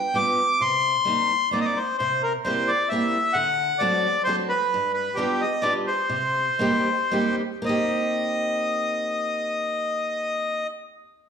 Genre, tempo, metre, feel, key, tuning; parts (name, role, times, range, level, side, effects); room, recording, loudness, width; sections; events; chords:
musette waltz; 108-134 BPM; 3/4; swing 54% on 8ths, rubato; C minor; A4 = 440 Hz
accordion; melody; 0.0-10.7 s; G4 to D6; -22 LUFS; left 1 dB
picked steel-string acoustic guitar; accompaniment; 0.1-10.7 s; G2 to G4; -28 LUFS; right 2 dB
wet large studio reverb, RT60 1.3 s; band playing live in one room; -21 LUFS; side -7 dB against mid
0.0-2.0 A section; 2.0-7.7 B section; 7.7-10.9 C section
slowing down 4.7-7.7
0.0 G7; 0.6 Cm7; 2.0 C7; 3.4 D7; 4.7 G7; 6.1 Cm7